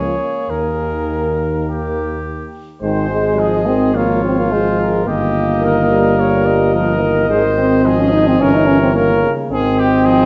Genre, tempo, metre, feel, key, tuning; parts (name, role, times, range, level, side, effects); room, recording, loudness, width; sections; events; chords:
classical, brass quintet; 107 BPM; 4/4; rubato; Ab major; A4 = 440 Hz
warm cornet; melody; 0.0-10.3 s; Bb4 to Eb5; -24 LUFS; equal
clear trumpet; second line; 0.0-10.3 s; F4 to C5; -25 LUFS; equal
warm French horn; accompaniment; 0.0-10.3 s; Eb3 to Eb4; -19 LUFS; equal
warm trombone; accompaniment; 0.0-10.3 s; Db3 to Ab3; -23 LUFS; equal
warm bass trombone; bass; 0.0-10.3 s; G1 to Eb2; -22 LUFS; equal
wet recital hall reverb, RT60 1.5 s; nothing above 7.8 kHz; -15 LUFS; mono
0.0-2.8 A section; 2.8-10.3 B section
0.5 Eb; 2.8 Ab; 4.0 Bbm7/Ab; 5.1 Eb/G; 7.3 Ab; 8.4 Gdim7; 9.5 Ab